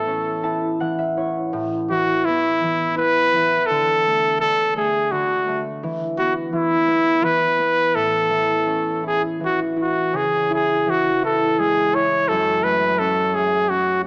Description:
children's music, lullaby; 84 BPM; 3/4; rubato; A major; A4 = 440 Hz
clear trumpet; melody; 0.0-14.0 s; E4 to C#5; -18 LUFS; equal
concert harp; accompaniment; 0.0-14.1 s; F#2 to A5; -23 LUFS; equal
light reverb; worn, warbling old tape, cassette tape, warbly pitch drift, small speaker sound; -17 LUFS; side -33 dB against mid
0.0-1.5 A section; 1.5-10.1 A section; 10.1-14.1 B section
harp fill 0.1-1.5
0.0 A; 3.7 D5; 5.8 E5; 7.9 A; 10.1 C#m; 12.3 F#m

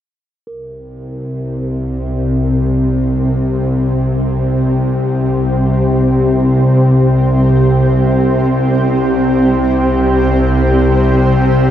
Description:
dark ambient drone; free time; A4 = 438 Hz
granular cloud pad; sustained chords; 1.9-11.7 s; C4 to C5; -15 LUFS; equal; built-in reverb
bowed-like drone; drone; 1.0-11.7 s; C2 to C3; -13 LUFS; equal; built-in reverb
bronze singing bowl; texture; 0.5-11.7 s; Bb4; -36 LUFS; right 2 dB
wet cathedral reverb, RT60 6.0 s; dark, warm production; -11 LUFS; side -10 dB against mid
0.5-11.7 A section
0.5 C5

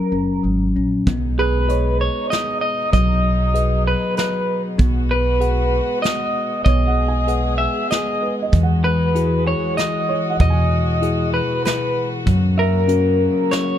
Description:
acoustic folk-pop ballad; 96 BPM; 3/4; straight; B major; A4 = 440 Hz
electric guitar through a small old amp; melody; 0.0-13.8 s; A#4 to E5; -21 LUFS; equal; tremolo, tape echo
bell-like tine electric piano; accompaniment; 0.0-13.8 s; B2 to F#5; -22 LUFS; left 3 dB
upright bass; bass; 0.1-13.3 s; F#1 to F#2; -19 LUFS; right 1 dB
warm chamber string section; sustained chords; 1.1-13.8 s; B2 to G#4; -29 LUFS; equal
soft brush drum kit; drums; 1.1-13.7 s; hi-hat, kick drum, snare drum; -21 LUFS; right 1 dB
felt-muted upright piano; arpeggios; 1.4-13.6 s; G#4 to G#5; -28 LUFS; right 8 dB
little or no reverb; close, detailed microphones, faint mains hum; -16 LUFS; side -10 dB against mid
0.0-1.1 A section; 1.1-13.8 B section
0.0 F#; 1.1 B6; 8.5 Eadd9; 12.3 F#

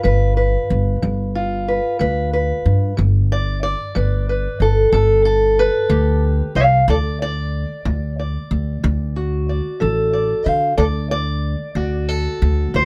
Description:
acoustic country blues, solo or duo; 62 BPM (dotted quarters); 12/8; straight; A4 = 440 Hz
fingerpicked steel-string acoustic guitar; melody; 0.0-12.8 s; D3 to F5; -21 LUFS; equal
upright bass; bass; 0.0-12.8 s; G1 to D3; -21 LUFS; equal
light reverb; close, detailed microphones; -18 LUFS; mono
0.0-12.8 A section
0.0 G7; 6.9 D

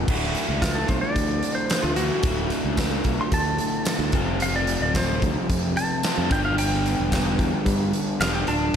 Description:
classic rock; 111 BPM; 4/4; straight; A4 = 445 Hz
crunchy overdriven guitar; riff; 0.0-8.8 s; D2 to G4; -26 LUFS; equal; slapback echo
modern bright fingered electric bass; bass; 0.0-8.7 s; D1 to G2; -27 LUFS; equal
huge arena drum kit; drums; 0.1-8.8 s; crash cymbal, hi-hat, kick drum, snare drum, tambourine; -25 LUFS; equal
clean lap steel guitar; melody; 0.6-8.8 s; F4 to C6; -28 LUFS; equal; slapback echo
light reverb, small room ambience; -21 LUFS; side -8 dB against mid
0.1-8.8 A section
electric slide guitar solo 0.1-8.8
0.1 D; 4.1 F; 6.3 G

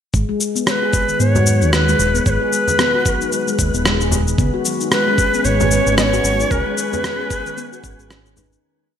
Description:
organic downtempo; 113 BPM; 4/4; swing 58% on 16ths; G# minor pentatonic; A4 = 440 Hz
handpan; arpeggios; 0.1-8.6 s; D#3 to G#4; -22 LUFS; left 4 dB; digital delay, shimmer reverb
smooth gliding synth bass; bass; 0.1-8.6 s; D#1 to G#2; -18 LUFS; right 1 dB; tube saturation
electronic kick drum; drums; 0.1-8.0 s; -20 LUFS; right 1 dB; overdrive, studio reverb
electronic shaker and rim click; drums; 0.1-8.6 s; -21 LUFS; left 1 dB; overdrive, studio reverb, gated reverb
breathy bright Native American-style cedar flute; melody; 0.7-8.1 s; B4 to D#5; -20 LUFS; equal; digital delay, shimmer reverb
frame drum; percussion; 1.4-8.5 s; -25 LUFS; left 2 dB
airy breathy pad; sustained chords; 4.4-8.6 s; G#3 to B4; -24 LUFS; right 1 dB; chorus, sidechain pumping, shimmer reverb
wind-like tuned noise texture; texture; 4.8-8.6 s; G#4 to G#5; -32 LUFS; right 1 dB; built-in reverb, ensemble chorus, shimmer reverb
moderate plate reverb, RT60 1.9 s, small room ambience; bright 1980s-style digital production; -14 LUFS; side -8 dB against mid
0.1-8.6 groove
fade-out 5.8-8.6
0.1 G#m7; 4.4 C#5

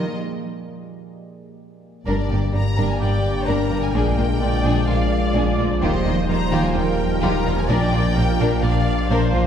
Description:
cinematic, hybrid orchestral and electronic film score; 128 BPM; 4/4; straight; G phrygian; A4 = 441 Hz
warm symphonic violin section; melody; 0.0-9.3 s; D5 to Bb5; -29 LUFS; left 3 dB
warm symphonic violin section; second line; 0.0-9.4 s; G3 to Bb4; -27 LUFS; left 3 dB
warm symphonic viola section; accompaniment; 0.0, 3.0-9.5 s; Bb4 to D5; -28 LUFS; equal
deep dark ambient pad; sustained chords; 0.0-9.5 s; D3 to Eb5; -27 LUFS; right 2 dB; chorus, built-in reverb
warm chamber cello section; bass; 0.0-9.4 s; G2 to Eb3; -25 LUFS; right 1 dB
clear trombone section; sustained chords; 2.1-9.5 s; G2 to G3; -30 LUFS; right 4 dB
mellow French horn section; sustained chords; 2.1-9.5 s; G3 to Eb4; -28 LUFS; left 4 dB
sub bass with octave; bass; 2.1-9.5 s; Eb1 to Bb1; -24 LUFS; equal
warm symphonic double bass section; bass; 2.1-9.4 s; G1 to Eb2; -26 LUFS; right 1 dB
wet scoring stage reverb, RT60 2.1 s; heard from further back in the room; -17 LUFS; side -8 dB against mid
0.0-2.1 A section; 2.1-9.5 B section
break 0.2-2.1
0.2 N.C.; 2.1 Gm; 3.9 Bb7; 5.8 Ebadd9; 7.7 Bb

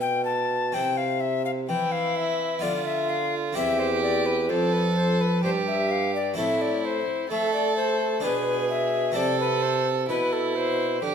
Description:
classical, baroque-style sonata movement with continuo; 64 BPM; 3/4; rubato; C major; A4 = 439 Hz
alto recorder; melody; 0.0-11.0 s; A4 to A5; -27 LUFS; left 6 dB
harpsichord; accompaniment; 0.0-11.1 s; E2 to A4; -30 LUFS; equal
dark bassoon; bass; 0.0-11.1 s; E2 to A3; -28 LUFS; right 2 dB
warm violin; second line; 1.7-11.1 s; E4 to A4; -28 LUFS; right 6 dB
moderate recital hall reverb, RT60 1.6 s; -22 LUFS; side -7 dB against mid
0.7-11.1 A section
0.0 Am; 0.7 C; 2.6 Bdim/D; 3.6 C/E; 6.4 Am; 8.2 G#dim/B; 9.2 Am

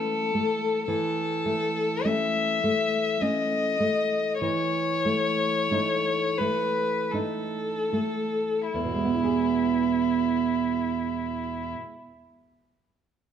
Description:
romantic duo for violin and classical guitar; 36-58 BPM; 3/4; rubato; E major; A4 = 439 Hz
rich violin; melody; 0.0-11.7 s; E4 to E5; -27 LUFS; left 3 dB
nylon-string guitar; accompaniment; 0.0-12.2 s; E2 to G#4; -26 LUFS; right 2 dB
moderate recital hall reverb, RT60 1.5 s; -24 LUFS; side -8 dB against mid
0.0-8.7 A section; 8.7-13.3 B section
slowing down 0.0-8.7
0.0 A/E; 8.7 E

